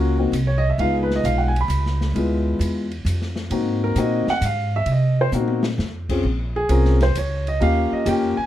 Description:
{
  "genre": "jazz piano trio",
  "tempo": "132 BPM",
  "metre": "3/4",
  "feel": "swing 68% on 8ths",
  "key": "Ab mixolydian",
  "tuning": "A4 = 440 Hz",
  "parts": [
    { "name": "dark grand piano", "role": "melody", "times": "0.0-8.5 s", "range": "Ab3 to Cb6", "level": "-21 LUFS", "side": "left 1 dB", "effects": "none" },
    { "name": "upright bass", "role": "bass", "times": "0.0-8.4 s", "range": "Bb1 to C3", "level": "-21 LUFS", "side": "equal", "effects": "none" },
    { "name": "open jazz drum kit", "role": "drums", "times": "0.3-8.2 s", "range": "crash cymbal, hi-hat, kick drum, ride cymbal, snare drum, toms", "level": "-32 LUFS", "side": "left 2 dB", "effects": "none" }
  ],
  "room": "little or no reverb",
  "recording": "close, detailed microphones",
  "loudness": "-18 LUFS",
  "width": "side -12 dB against mid",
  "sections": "0.0-8.5 A section",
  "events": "grand piano solo 0.0-8.5; drum fill 5.3-5.8",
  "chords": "0.3 Cm; 0.8 Db7; 2.1 Ddim7; 3.5 Ab7; 4.9 Cm7b5; 5.8 Fm; 6.2 Bbm7; 7.6 Eb7"
}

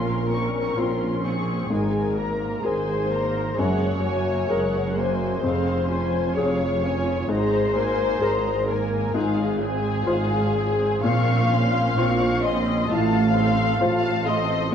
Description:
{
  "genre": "cinematic, emotional film score for orchestra",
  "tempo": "65 BPM",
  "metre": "4/4",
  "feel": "rubato",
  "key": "Bb minor",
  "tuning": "A4 = 440 Hz",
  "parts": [
    { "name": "muted symphonic violin section", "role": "melody", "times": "0.0-14.7 s", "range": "F5 to Db6", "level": "-33 LUFS", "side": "left 1 dB", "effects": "none" },
    { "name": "muted symphonic violin section", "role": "second line", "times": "0.0-14.7 s", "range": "Ab4 to F5", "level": "-26 LUFS", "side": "left 4 dB", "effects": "none" },
    { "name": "felt-muted upright piano", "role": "accompaniment", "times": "0.0-14.7 s", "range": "F2 to Db5", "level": "-27 LUFS", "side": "left 2 dB", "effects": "none" },
    { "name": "muted symphonic viola section", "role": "accompaniment", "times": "0.0-14.7 s", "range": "C3 to Bb4", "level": "-28 LUFS", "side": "equal", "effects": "none" },
    { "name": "muted symphonic cello section", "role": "bass", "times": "0.0-14.6 s", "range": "F2 to Bb2", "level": "-28 LUFS", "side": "right 4 dB", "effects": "none" },
    { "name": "muted symphonic double bass section", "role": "bass", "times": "0.0-14.6 s", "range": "F1 to Bb1", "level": "-28 LUFS", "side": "right 3 dB", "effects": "none" }
  ],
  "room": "moderate scoring stage reverb, RT60 1.6 s",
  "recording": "worn, warbling old tape, cassette tape, warbly pitch drift",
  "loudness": "-20 LUFS",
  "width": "side -8 dB against mid",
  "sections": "0.0-14.7 A section",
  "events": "none",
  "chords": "0.0 Bbmadd9; 1.7 Absus2; 3.6 Gbadd9; 5.4 Dbmaj7/F; 7.3 Absus2; 9.2 Fm/Ab; 11.0 Bbmadd9; 12.9 F/A"
}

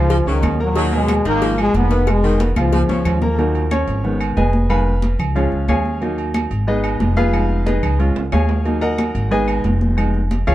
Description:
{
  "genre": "latin, salsa",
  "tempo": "182 BPM",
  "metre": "4/4",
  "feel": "straight",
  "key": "Eb minor",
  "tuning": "A4 = 435 Hz",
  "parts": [
    { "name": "bright trombone section", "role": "melody", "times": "0.0-3.2 s", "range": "Gb2 to Cb4", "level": "-20 LUFS", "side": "left 1 dB", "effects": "tape echo" },
    { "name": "bright upright piano", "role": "accompaniment", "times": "0.0-10.5 s", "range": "Eb3 to Db6", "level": "-21 LUFS", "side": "equal", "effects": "none" },
    { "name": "upright bass", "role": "bass", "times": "0.0-10.5 s", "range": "F1 to Eb2", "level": "-18 LUFS", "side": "equal", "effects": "none" },
    { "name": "mellow saxophone section", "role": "second line", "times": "0.1-3.2 s", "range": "Db3 to Gb3", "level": "-26 LUFS", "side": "equal", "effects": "none" },
    { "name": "agogo bells and timbales", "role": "percussion", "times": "0.1-10.5 s", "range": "none", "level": "-28 LUFS", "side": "right 7 dB", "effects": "none" },
    { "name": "congas", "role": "percussion", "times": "0.1-10.5 s", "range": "none", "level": "-25 LUFS", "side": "equal", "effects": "none" },
    { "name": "cowbell and bongos", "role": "percussion", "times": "0.1-3.3 s", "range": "none", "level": "-28 LUFS", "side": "left 7 dB", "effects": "none" },
    { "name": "claves", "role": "percussion", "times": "0.4-10.5 s", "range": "none", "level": "-32 LUFS", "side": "left 1 dB", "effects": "none" }
  ],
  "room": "light reverb",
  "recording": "dark, warm production",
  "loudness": "-15 LUFS",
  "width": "side -14 dB against mid",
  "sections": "0.0-3.4 A section; 3.4-10.5 B section",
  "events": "drum fill 2.6-3.4, 8.2-8.7; upright piano solo 3.4-10.5",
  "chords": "0.1 Db; 0.8 Ebm; 1.4 Abm; 2.1 Fm7b5; 2.7 Db; 3.4 Ebm; 4.0 Fm7b5; 5.4 Db; 6.0 Ebm; 6.7 Abm; 7.3 Fm7b5; 8.0 Db; 8.7 Ebm; 9.3 Abm; 10.0 Fm7b5"
}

